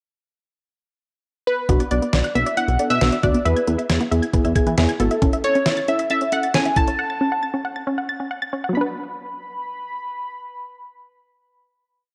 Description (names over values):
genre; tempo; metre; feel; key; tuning
synth-pop; 136 BPM; 4/4; straight; B dorian; A4 = 440 Hz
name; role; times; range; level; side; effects
funky polysynth comp; melody; 1.5-11.8 s; A4 to B5; -25 LUFS; equal; chorus
mellow FM electric piano; accompaniment; 1.7-6.9 s; B3 to A4; -27 LUFS; equal; chorus, phaser
unison pluck; arpeggios; 1.7-11.9 s; F#3 to A6; -27 LUFS; equal; analog delay
chorused synth bass; bass; 1.7-5.1 s; G#1 to E3; -23 LUFS; equal; none
detuned 8-bit digital drum machine; drums; 1.7-7.0 s; hi-hat, kick drum, snare drum; -24 LUFS; equal; none
room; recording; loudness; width
light reverb; dry, gritty hardware recording; -21 LUFS; mono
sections
0.0-1.7 pickup bar; 1.7-8.7 verse; 8.7-12.1 final chord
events
none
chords
0.0 N.C.; 1.7 Bm; 3.5 E; 5.2 A; 7.0 F#m; 8.7 Bm